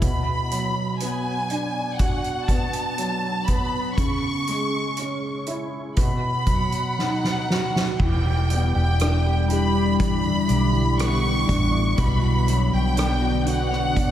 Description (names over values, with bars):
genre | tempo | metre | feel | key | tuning
pop ballad | 60 BPM | 4/4 | straight | B dorian | A4 = 442 Hz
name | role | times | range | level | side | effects
warm studio violin section | melody | 0.0-14.1 s | F#5 to C#6 | -27 LUFS | equal | analog delay
warm concert grand piano | accompaniment | 0.0-14.1 s | B2 to G4 | -27 LUFS | right 1 dB | ensemble chorus
soft-mallet drum kit | drums | 0.0-14.1 s | crash cymbal, hi-hat, kick drum, rim click, snare drum | -25 LUFS | equal | none
glassy FM pad | sustained chords | 9.0-14.1 s | D3 to E4 | -26 LUFS | left 2 dB | ensemble chorus, built-in reverb
clean electric guitar | arpeggios | 8.0-14.1 s | B2 to D5 | -29 LUFS | equal | analog chorus, analog delay
vintage muted fingered electric bass | bass | 8.0-14.1 s | E1 to B1 | -22 LUFS | equal | none
room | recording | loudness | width
wet lush hall reverb, RT60 2.8 s | dreamy mix soaked in reverb | -20 LUFS | side -11 dB against mid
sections
0.0-8.0 A section; 8.0-14.1 B section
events
drum fill 7.0-8.0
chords
0.0 Bm; 4.0 C#m; 6.0 B; 8.0 Em7; 12.0 Bmadd9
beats
| 0.02 1.00 1.99 2.98 | 3.97 4.97 5.97 6.98 | 8.00 9.00 10.00 10.99 | 11.99 12.98 13.97